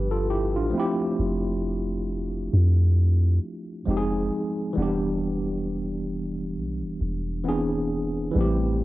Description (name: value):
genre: contemporary R&B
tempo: 67 BPM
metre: 4/4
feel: swing 58% on 16ths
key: unclear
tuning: A4 = 440 Hz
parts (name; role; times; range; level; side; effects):
- tine electric piano; accompaniment; 0.0-8.8 s; E3 to B4; -26 LUFS; equal; overdrive, fast stereo tremolo, cassette tape
- soft 808-style bass; bass; 0.0-8.8 s; E1 to F2; -25 LUFS; equal; none
room: little or no reverb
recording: home recording on cassette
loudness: -23 LUFS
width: side -17 dB against mid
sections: 0.0-8.8 A section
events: none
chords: 0.0 G7; 0.7 Fmaj9; 3.9 Fm7; 4.8 Em7; 7.5 E7b13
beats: 0.29 | 1.19 2.08 2.98 3.87 | 4.77 5.66 6.56 7.46 | 8.35